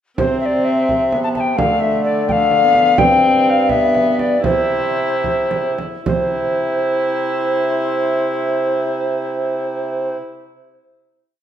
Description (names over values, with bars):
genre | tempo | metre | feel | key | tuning
classical, renaissance-style consort dance | 70-87 BPM (dotted quarters) | 6/8 | straight | C major | A4 = 441 Hz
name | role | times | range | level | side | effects
alto recorder | melody | 0.2-10.2 s | C5 to A5 | -17 LUFS | left 2 dB | none
warm viola | accompaniment | 0.2-10.2 s | A3 to E4 | -22 LUFS | equal | none
warm bassoon | bass | 0.2-10.2 s | G2 to D3 | -21 LUFS | right 3 dB | none
frame drum | percussion | 0.2-6.3 s | none | -24 LUFS | right 4 dB | none
room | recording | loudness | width
wet recital hall reverb, RT60 1.5 s | minimal, uncompressed stereo recording | -14 LUFS | side -10 dB against mid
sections
0.2-6.1 A section; 6.1-9.5 final chord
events
slowing down 2.3-6.1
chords
0.2 C; 1.6 Dm; 3.0 Gsus4; 3.7 G; 4.4 C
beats
| 0.20 0.90 | 1.59 2.28 | 2.98 3.70 | 4.45 5.24 | 6.07 6.93 | 7.78 8.63